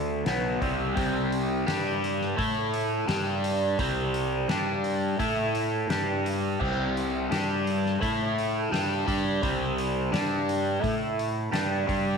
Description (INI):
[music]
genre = psychedelic rock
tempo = 85 BPM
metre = 4/4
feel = straight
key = unclear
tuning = A4 = 439 Hz
[part]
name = overdriven semi-hollow guitar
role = riff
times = 0.0-12.2 s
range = B2 to A4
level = -26 LUFS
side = equal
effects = phaser
[part]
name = fuzz fingered electric bass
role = bass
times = 0.0-12.2 s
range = B1 to A2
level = -32 LUFS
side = equal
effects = overdrive
[part]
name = soft-mallet drum kit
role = drums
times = 0.3-12.1 s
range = crash cymbal, hi-hat, kick drum, snare drum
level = -34 LUFS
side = left 2 dB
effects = none
[sound]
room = light reverb, small room ambience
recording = 1960s-style stereo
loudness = -25 LUFS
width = side -5 dB against mid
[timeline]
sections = 0.0-12.2 A section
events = none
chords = 0.3 Gadd11/B; 1.0 C5; 1.7 G5; 2.4 A5; 3.1 G5; 3.8 C5; 4.5 G5; 5.2 A5; 5.9 G5; 6.6 C5; 7.3 G5; 8.0 A5; 8.7 C5; 10.1 G5; 10.8 A5; 11.5 G5